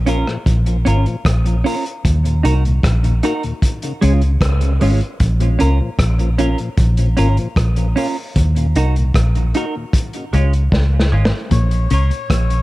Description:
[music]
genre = dub reggae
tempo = 76 BPM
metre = 4/4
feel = straight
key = Bb minor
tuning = A4 = 436 Hz
[part]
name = vintage muted fingered electric bass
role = bass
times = 0.0-12.6 s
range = Ab1 to Eb2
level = -15 LUFS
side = equal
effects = none
[part]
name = clean electric guitar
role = accompaniment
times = 0.1-12.1 s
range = Ab3 to Bb4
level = -22 LUFS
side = right 2 dB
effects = analog chorus, high-pass filter, tape echo
[part]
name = mellow tonewheel organ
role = accompaniment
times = 0.1-11.2 s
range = Eb2 to Gb4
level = -26 LUFS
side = left 2 dB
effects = overdrive, chorus vibrato, slow rotary speaker, high-pass filter, tape echo
[part]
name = vintage drum kit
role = drums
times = 0.1-12.6 s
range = hi-hat, kick drum, rim click, snare drum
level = -19 LUFS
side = equal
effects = none
[part]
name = melodica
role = melody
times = 11.5-12.6 s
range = Db5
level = -25 LUFS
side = left 5 dB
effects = tape echo
[part]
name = clean electric guitar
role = riff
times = 11.5-12.5 s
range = Bb2 to Db3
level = -22 LUFS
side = left 4 dB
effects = tape echo
[sound]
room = light reverb, small room ambience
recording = dark, warm production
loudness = -14 LUFS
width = side -18 dB against mid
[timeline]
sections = 0.0-12.6 A section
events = break 0.0-11.5; filter sweep 8.4-12.6; drum fill 10.7-11.5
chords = 0.0 Bbm; 2.0 Ebm; 3.6 Db; 5.2 Bbm; 8.4 Ebm; 9.9 Db; 11.5 Bbm

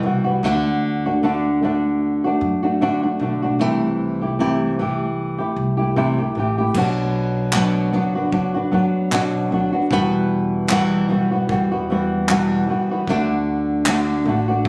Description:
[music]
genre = acoustic pop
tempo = 76 BPM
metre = 4/4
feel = swing 55% on 16ths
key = unclear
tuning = A4 = 440 Hz
[part]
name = flamenco guitar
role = accompaniment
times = 0.0-14.7 s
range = E2 to G4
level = -20 LUFS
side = equal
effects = none
[part]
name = upright bass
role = bass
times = 0.0-14.7 s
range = F#1 to F#2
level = -30 LUFS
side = equal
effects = none
[part]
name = natural country drum kit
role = drums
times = 6.7-14.7 s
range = crash cymbal, handclaps, kick drum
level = -28 LUFS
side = equal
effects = none
[sound]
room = light reverb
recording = recorded on a phone in the room, studio reverb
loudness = -20 LUFS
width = mono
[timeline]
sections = 0.0-6.8 A section; 6.8-14.7 B section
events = none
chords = 0.4 D; 3.6 C6; 6.8 Bm; 9.9 Emadd9; 13.1 D

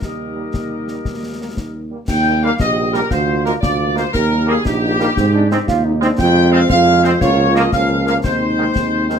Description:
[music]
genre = military-style march for wind band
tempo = 117 BPM (dotted quarters)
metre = 6/8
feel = straight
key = Eb major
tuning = A4 = 440 Hz
[part]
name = dark trumpet section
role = melody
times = 0.0-9.2 s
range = G4 to G5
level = -22 LUFS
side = left 1 dB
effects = none
[part]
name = clear euphonium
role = second line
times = 0.0-9.2 s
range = C4 to G4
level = -23 LUFS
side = right 5 dB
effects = none
[part]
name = clear woodwind section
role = second line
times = 0.0-9.2 s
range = G4 to G5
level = -22 LUFS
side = left 1 dB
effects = none
[part]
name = dark French horn section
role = accompaniment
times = 0.0-9.2 s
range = F3 to F4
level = -22 LUFS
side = left 3 dB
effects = none
[part]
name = mellow tuba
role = bass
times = 0.0-9.2 s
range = Bb1 to Ab2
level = -18 LUFS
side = right 2 dB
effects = none
[part]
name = concert snare drum, concert bass drum and clash cymbals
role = drums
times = 0.0-9.2 s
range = none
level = -25 LUFS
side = left 2 dB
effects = none
[part]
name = warm trombone section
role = sustained chords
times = 0.4-9.2 s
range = Eb3 to C4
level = -23 LUFS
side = right 1 dB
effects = none
[sound]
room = moderate large studio reverb, RT60 0.8 s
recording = none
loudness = -13 LUFS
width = side -7 dB against mid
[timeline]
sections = 0.0-2.1 A section; 2.1-9.2 A section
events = none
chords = 0.0 Eb; 3.1 Bb7/D; 4.1 Eb; 5.2 Ab; 6.2 Fm; 7.2 Bbm/Db; 8.2 Ab/Eb

